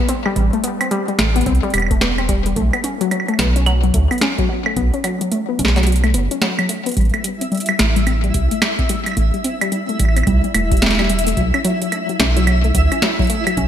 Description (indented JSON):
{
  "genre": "IDM",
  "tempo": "109 BPM",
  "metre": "4/4",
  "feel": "swing 62% on 16ths",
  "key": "A dorian",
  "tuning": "A4 = 440 Hz",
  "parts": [
    { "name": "warbly dusty pluck", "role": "arpeggios", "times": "0.0-13.7 s", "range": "F#3 to C#4", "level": "-20 LUFS", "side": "left 2 dB", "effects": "chorus, ping-pong delay" },
    { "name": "booming analog drum machine", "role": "drums", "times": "0.1-13.7 s", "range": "hi-hat, snare drum, woodblock", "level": "-20 LUFS", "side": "right 2 dB", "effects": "gated reverb, ping-pong delay" },
    { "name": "round analog bass", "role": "bass", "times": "0.4-13.7 s", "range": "E1 to D2", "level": "-17 LUFS", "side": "equal", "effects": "tube saturation" },
    { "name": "electronic kick drum", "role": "drums", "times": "0.4-13.7 s", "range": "none", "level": "-22 LUFS", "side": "equal", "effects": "none" },
    { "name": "twinkling granular texture", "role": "texture", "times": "7.4-13.7 s", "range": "E4 to E5", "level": "-24 LUFS", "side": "equal", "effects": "built-in reverb, lush chorus" }
  ],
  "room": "light reverb, digital ambience",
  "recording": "bright 1980s-style digital production",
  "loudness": "-15 LUFS",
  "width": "side -10 dB against mid",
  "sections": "0.0-13.7 A section",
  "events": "kick drops out 5.9-7.0",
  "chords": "0.0 Am9; 2.6 B7(no3); 7.0 Am7; 11.4 B9sus4"
}